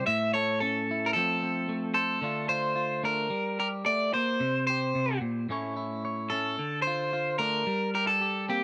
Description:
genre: highlife.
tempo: 110 BPM.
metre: 4/4.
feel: straight.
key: D minor.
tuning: A4 = 440 Hz.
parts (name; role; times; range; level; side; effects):
electric guitar at the edge of break-up; melody; 0.0-8.6 s; G4 to E5; -30 LUFS; equal; none.
clean electric guitar; accompaniment; 0.0-8.6 s; A2 to C#5; -34 LUFS; equal; none.
room: light reverb.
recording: none.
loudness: -29 LUFS.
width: mono.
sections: 0.0-2.2 A section; 2.2-8.6 B section.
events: none.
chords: 0.1 A; 1.1 F; 2.2 Dm; 3.3 Gm; 4.4 C5; 5.5 A; 6.6 Dm; 7.7 Gm.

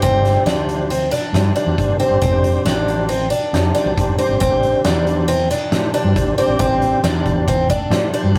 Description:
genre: progressive instrumental, band music in an uneven meter.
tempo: 137 BPM.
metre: 5/4.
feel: straight.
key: unclear.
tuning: A4 = 440 Hz.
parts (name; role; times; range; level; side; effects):
tonewheel organ; accompaniment; 0.0-8.4 s; D4 to D5; -25 LUFS; equal; chorus vibrato, slow rotary speaker.
picked twelve-string acoustic guitar; arpeggios; 0.0-8.4 s; C4 to D4; -21 LUFS; equal; none.
mellow fretless electric bass; bass; 0.0-8.4 s; F1 to A2; -22 LUFS; equal; none.
oversized low-tuned drum kit; drums; 0.0-8.4 s; hi-hat, kick drum, snare drum; -24 LUFS; equal; none.
egg shaker; percussion; 0.0-7.9 s; none; -42 LUFS; equal; none.
room: wet booth ambience, RT60 0.2 s.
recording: rough rehearsal-room recording.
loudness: -17 LUFS.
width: mono.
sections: 0.0-8.4 A section.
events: none.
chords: 0.0 Gsus4; 2.2 Dm7/F; 4.4 Am7.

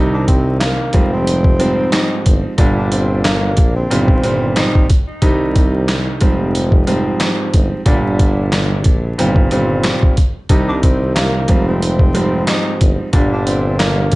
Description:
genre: hip hop, boom-bap hip-hop.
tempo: 91 BPM.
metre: 4/4.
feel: swing 57% on 16ths.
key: unclear.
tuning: A4 = 439 Hz.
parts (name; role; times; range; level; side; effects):
warm grand piano; accompaniment; 0.0-14.2 s; Ab2 to Eb4; -18 LUFS; right 1 dB; cassette tape.
breathy tuba; bass; 0.0-14.2 s; F1 to C2; -19 LUFS; equal; none.
growling tenor saxophone; melody; 0.1-4.9, 10.7-14.2 s; Bb3 to Eb4; -22 LUFS; equal; analog delay.
boom bap sampler-style drum kit; drums; 0.3-14.2 s; handclaps, hi-hat, kick drum, snare drum; -14 LUFS; equal; none.
room: light reverb.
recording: vinyl crackle, nothing above 10.8 kHz.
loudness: -12 LUFS.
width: side -20 dB against mid.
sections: 0.0-14.2 A section.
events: none.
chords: 0.0 Cm; 0.9 Fmadd9; 2.6 Gm; 3.9 Eb6/G; 5.2 Cm; 6.2 Fmadd9; 7.9 Gm; 9.2 Eb6/G; 10.5 Cm; 11.5 Fmadd9; 13.1 Gm.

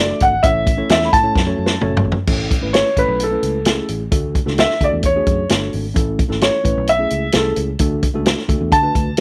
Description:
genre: uptempo 1960s-style soul.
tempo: 130 BPM.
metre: 4/4.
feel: straight.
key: A major.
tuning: A4 = 439 Hz.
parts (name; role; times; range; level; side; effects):
warm baby grand piano; melody; 0.0-9.2 s; A4 to B5; -20 LUFS; equal; none.
tine electric piano; accompaniment; 0.0-9.2 s; A3 to E5; -26 LUFS; equal; overdrive.
fingered electric bass; bass; 0.0-9.1 s; F#1 to D3; -26 LUFS; equal; none.
vintage drum kit; drums; 0.2-9.2 s; crash cymbal, hi-hat, kick drum, snare drum, toms; -20 LUFS; equal; none.
room: little or no reverb.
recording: none.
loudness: -17 LUFS.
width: mono.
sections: 0.0-2.3 A section; 2.3-9.2 B section.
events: drum fill 1.4-2.3; grand piano solo 2.3-9.2.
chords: 0.4 A; 1.4 F#m; 2.3 A; 4.1 D; 6.0 A; 7.8 D.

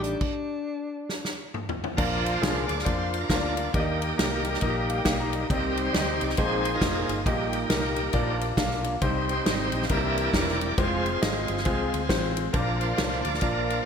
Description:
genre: uptempo gospel.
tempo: 136 BPM.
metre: 4/4.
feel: swing 62% on 8ths.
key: unclear.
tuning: A4 = 441 Hz.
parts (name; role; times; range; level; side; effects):
breathy alto saxophone; melody; 0.0-1.5 s; D4; -32 LUFS; left 3 dB; none.
clear concert grand piano; accompaniment; 0.0-13.8 s; Bb2 to Bb5; -29 LUFS; left 2 dB; none.
bright tonewheel organ; sustained chords; 0.0-13.9 s; Eb3 to F5; -29 LUFS; right 2 dB; slow rotary speaker, overdrive.
vintage muted fingered electric bass; bass; 0.0-13.8 s; E1 to F2; -32 LUFS; equal; none.
natural country drum kit; drums; 0.0-13.8 s; crash cymbal, hi-hat, kick drum, ride cymbal, snare drum, toms; -29 LUFS; equal; gated reverb.
room: wet lush hall reverb, RT60 1.9 s, small room ambience.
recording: bright 1980s-style digital production.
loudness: -24 LUFS.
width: side -7 dB against mid.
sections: 0.0-2.0 A section; 2.0-13.9 B section.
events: stop 0.2-2.0; drum fill 1.1-2.0; tonewheel organ solo 2.0-13.9; grand piano fill 4.6-5.5.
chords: 0.2 N.C.; 2.0 Bb; 3.7 Eb; 5.5 Cm; 6.4 Bb9sus4; 7.3 Eb/Bb; 8.1 Bb; 9.0 Cm; 9.9 C7; 10.8 Fm; 12.5 Bb.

